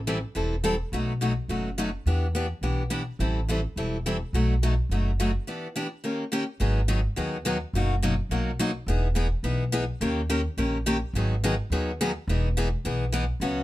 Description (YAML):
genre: acoustic string swing (jazz manouche)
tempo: 211 BPM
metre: 4/4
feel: swing 59% on 8ths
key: E minor, G# minor from 6.6 s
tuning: A4 = 436 Hz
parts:
  - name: upright bass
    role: bass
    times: 0.0-13.6 s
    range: E1 to E2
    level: -26 LUFS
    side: equal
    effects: none
  - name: picked steel-string acoustic guitar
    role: accompaniment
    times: 0.1-13.6 s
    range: B2 to A#4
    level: -27 LUFS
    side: left 1 dB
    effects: none
room: little or no reverb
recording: close, detailed microphones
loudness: -24 LUFS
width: side -16 dB against mid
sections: 0.0-6.6 A section; 6.6-13.6 B section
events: break 5.5-6.6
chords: 0.0 Am7; 0.9 B7; 2.1 Em7; 3.2 Am7; 4.3 B7; 5.5 Em7; 6.0 D#7; 6.6 G#m7; 7.7 Bmaj7/F#; 8.9 Emaj7; 10.0 D#7; 11.1 G#m7; 12.3 Emaj7